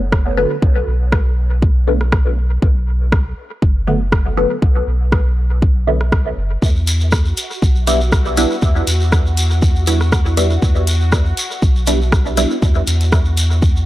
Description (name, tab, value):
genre	dub techno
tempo	120 BPM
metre	4/4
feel	swing 54% on 16ths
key	B minor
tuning	A4 = 440 Hz
part	warm sub bass	bass	0.0-13.9 s	F#1 to E2	-16 LUFS	equal	sidechain pumping
part	deep house drum kit	drums	0.1-13.5 s	hi-hat, rim click	-23 LUFS	equal	dub echo
part	electronic kick drum	drums	0.1-13.7 s	none	-15 LUFS	equal	none
part	filtered dub chord stab	stabs	0.4-12.6 s	D3 to E4	-20 LUFS	equal	phaser, sidechain pumping, dub echo
part	shekere	percussion	6.6-13.9 s	none	-25 LUFS	equal	none
part	bubbling stepped-filter texture	texture	7.1-13.9 s	F#4	-30 LUFS	right 1 dB	chorus, built-in reverb, sidechain pumping
room	digital ambience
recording	dry, gritty hardware recording, transformer saturation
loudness	-13 LUFS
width	side -15 dB against mid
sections	0.0-13.9 A section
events	none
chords	0.0 B5; 6.6 Em7